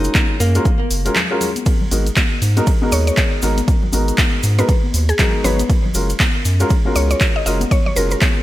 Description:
deep house; 119 BPM; 4/4; swing 60% on 16ths; G# dorian; A4 = 440 Hz
archtop guitar, miked and amplified; melody; 0.0-0.9 s; A#3 to D#4; -25 LUFS; right 1 dB; digital delay
felt-muted upright piano; stabs; 0.0-8.4 s; G#3 to C#5; -22 LUFS; left 1 dB; vintage 12-bit sampler grit, sidechain pumping, digital delay
round analog bass; bass; 0.0-8.2 s; F#1 to G#2; -17 LUFS; equal; sidechain pumping
punchy analog drum machine; drums; 0.0-8.3 s; handclaps, hi-hat, ride cymbal; -22 LUFS; right 1 dB; overdrive
tube shaker; percussion; 0.0-8.3 s; -30 LUFS; left 2 dB
electronic kick drum; drums; 0.1-8.3 s; -16 LUFS; equal; overdrive
congas; percussion; 0.1-8.3 s; -28 LUFS; left 4 dB
mallet-like synth pluck; melody; 2.9-8.2 s; G#4 to D#5; -23 LUFS; equal; chorus, vintage 12-bit sampler grit, digital delay
light reverb, digital ambience; bright 1980s-style digital production; -14 LUFS; side -15 dB against mid
0.0-8.4 A section
0.0 F#maj9; 1.7 G#m9; 5.7 F#maj9

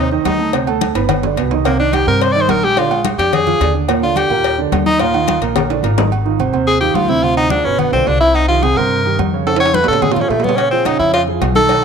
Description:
Afro-Cuban jazz; 215 BPM; 4/4; straight; Eb major, Ab major from 6.1 s; A4 = 440 Hz
edgy tenor saxophone; melody; 0.0-11.8 s; A3 to D5; -15 LUFS; left 2 dB
dark concert grand piano; accompaniment; 0.0-11.8 s; Bb2 to D6; -18 LUFS; right 10 dB
upright bass; bass; 0.0-11.8 s; G1 to Bb2; -20 LUFS; left 1 dB
congas; percussion; 0.1-11.8 s; -23 LUFS; left 12 dB
cowbell and bongos; percussion; 0.3-6.0, 10.6-11.8 s; -22 LUFS; left 14 dB
timbales and agogo bells; percussion; 0.3-11.8 s; -23 LUFS; right 9 dB
moderate echo chamber reverb, RT60 1.6 s; 1960s-style stereo with parts hard left and right; -12 LUFS; side -6 dB against mid
0.0-6.1 A section; 6.1-11.8 A section
tenor saxophone solo 0.0-11.8; drum fill 1.0-1.7, 5.6-6.1, 9.5-10.6
0.0 Ab (rootless); 0.5 D7sus4; 1.1 G; 1.7 Cm7; 2.8 Bb7; 3.9 Ebmaj7sus2; 6.1 Ab6; 7.2 Dm7b5; 7.8 G7; 8.3 Cm7; 9.5 Faug; 10.6 Bbm7

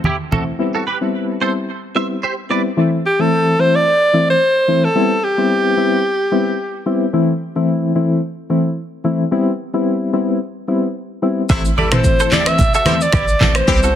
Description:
afrobeats; 110 BPM; 4/4; swing 55% on 16ths; A minor; A4 = 442 Hz
congas; percussion; 0.0-0.5, 11.8-13.6 s; -21 LUFS; right 2 dB
direct-recorded clean electric guitar; riff; 0.1-2.6, 11.5-13.9 s; E4 to E5; -22 LUFS; right 4 dB; ensemble chorus, low-pass filter, tape echo
soft electric-piano-like synth keys; accompaniment; 0.3-13.9 s; E3 to E4; -17 LUFS; left 2 dB; chorus, tremolo, low-pass filter
breathy alto saxophone; melody; 3.1-6.9, 11.8-14.0 s; G4 to E5; -15 LUFS; equal; low-pass filter
clear horn section; second line; 11.5-13.8 s; C3 to A4; -24 LUFS; left 4 dB; tape echo
short 808-style bass; bass; 11.5-14.0 s; G1 to C2; -19 LUFS; right 1 dB
afro-pop drum kit; drums; 11.5-13.9 s; finger snaps, handclaps, kick drum, rim click, shaker, toms; -17 LUFS; right 1 dB
light reverb; dense, heavily limited modern master; -14 LUFS; side -10 dB against mid
0.0-2.8 A section; 2.8-14.0 B section
0.0 Am; 0.6 Cmaj7; 2.8 Am; 5.0 Cmaj7; 7.1 Am; 9.3 Cmaj7; 11.5 Am

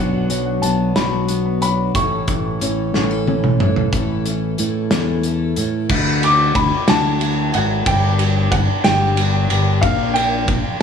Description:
indie folk with a building arrangement; 61 BPM (dotted quarters); 6/8; straight; D major; A4 = 439 Hz
dark upright piano; melody; 0.0-3.2, 6.2-10.8 s; F5 to D6; -21 LUFS; left 1 dB; digital delay
fingerpicked steel-string acoustic guitar; accompaniment; 0.0-5.9 s; A2 to A4; -24 LUFS; left 2 dB
picked twelve-string acoustic guitar; accompaniment; 0.0-10.8 s; G2 to Bb4; -26 LUFS; left 7 dB
fingered electric bass; bass; 0.0-10.6 s; G1 to A2; -19 LUFS; equal
loose indie drum kit; drums; 0.3-10.6 s; crash cymbal, hi-hat, kick drum, ride cymbal, snare drum, toms; -20 LUFS; right 1 dB
light reverb; small room ambience; -15 LUFS; side -7 dB against mid
0.0-3.9 A section; 3.9-5.9 B section; 5.9-10.8 C section
drum fill 2.9-3.9
0.0 Bm; 2.0 A; 5.9 Dadd9; 7.9 G; 9.8 Bb

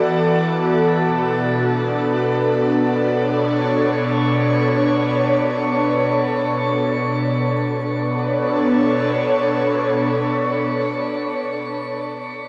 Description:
ambient; free time; B minor; A4 = 441 Hz
airy breathy pad; sustained chords; 0.0-11.6 s; B2 to D5; -19 LUFS; equal; chorus, phaser
wet shimmer reverb, RT60 7.3 s; worn, warbling old tape, cassette tape, warbly pitch drift; -19 LUFS; mono
0.0-7.6 A section; 7.6-10.9 B section
0.0 E7sus4; 1.0 Bm7

